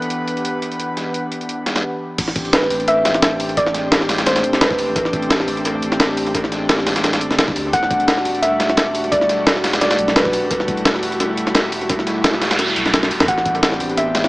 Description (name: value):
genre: liquid drum and bass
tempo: 173 BPM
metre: 4/4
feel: swing 54% on 16ths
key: A dorian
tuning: A4 = 440 Hz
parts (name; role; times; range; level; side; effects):
- soft round pluck; melody; 0.0-10.5, 13.3-14.3 s; A4 to F#5; -19 LUFS; equal; chorus, analog delay
- airy breathy pad; sustained chords; 0.0-14.3 s; E3 to F#5; -22 LUFS; equal; chorus
- dusty soul sampler-style drum kit; drums; 0.0-14.3 s; hi-hat, snare drum; -23 LUFS; equal; overdrive, high-pass filter on hats, high-pass filter on snare
- sub bass with octave; bass; 2.2-14.3 s; D1 to E2; -32 LUFS; equal; tube saturation
- breakbeat sampler-style drum kit; drums; 2.2-14.3 s; crash cymbal, hi-hat, snare drum; -19 LUFS; equal; analog delay
- electronic kick drum; drums; 2.2-13.5 s; none; -27 LUFS; equal; none
- noise sweep; sound effects; 12.2-13.3 s; none; -23 LUFS; right 1 dB; none
room: wet echo chamber reverb, RT60 1.7 s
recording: echo-heavy mix, small speaker sound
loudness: -15 LUFS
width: side -21 dB against mid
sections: 0.0-2.2 A section; 2.2-14.3 B section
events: break 1.8-2.2; drop 2.2-14.3; noise sweep 12.2-13.3; kick drops out 12.6-13.3; drum fill 13.0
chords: 0.0 Em11; 2.2 Am11; 7.7 Em11; 13.3 Am11